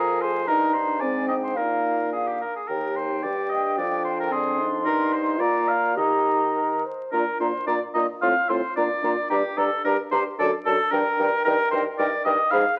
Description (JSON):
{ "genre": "quick classical-period movement for wind quintet", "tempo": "111 BPM", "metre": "2/4", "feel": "rubato", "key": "Eb major, Bb major from 7.1 s", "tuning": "A4 = 442 Hz", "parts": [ { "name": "silver concert flute", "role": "melody", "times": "0.0-12.6 s", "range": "F5 to C6", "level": "-30 LUFS", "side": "equal", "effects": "none" }, { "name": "clear oboe", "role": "second line", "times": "0.0-12.8 s", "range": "G4 to F5", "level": "-27 LUFS", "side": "equal", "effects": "none" }, { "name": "clear French horn", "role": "accompaniment", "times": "0.0-12.6 s", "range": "C4 to G4", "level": "-34 LUFS", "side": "equal", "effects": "none" }, { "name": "clear clarinet", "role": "accompaniment", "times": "0.0-12.6 s", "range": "C4 to C5", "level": "-32 LUFS", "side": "equal", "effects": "none" }, { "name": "mellow bassoon", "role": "bass", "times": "0.0-12.6 s", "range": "Eb2 to Eb3", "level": "-31 LUFS", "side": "equal", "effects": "none" } ], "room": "wet large studio reverb, RT60 1.3 s", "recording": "very old 78 rpm record, vinyl crackle", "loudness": "-23 LUFS", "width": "mono", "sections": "0.0-7.1 A section; 7.1-12.8 B section", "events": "none", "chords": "0.5 Eb/G; 1.0 Ab; 1.6 Bbsus4; 2.1 Bb; 2.7 Eb; 3.8 Fm13; 4.9 Eb/G; 5.4 Bb; 6.0 Eb; 7.1 Bb; 8.2 F/A; 8.8 Bb; 9.3 Gm; 10.4 D/F#; 10.9 Gm; 11.5 Eb/G" }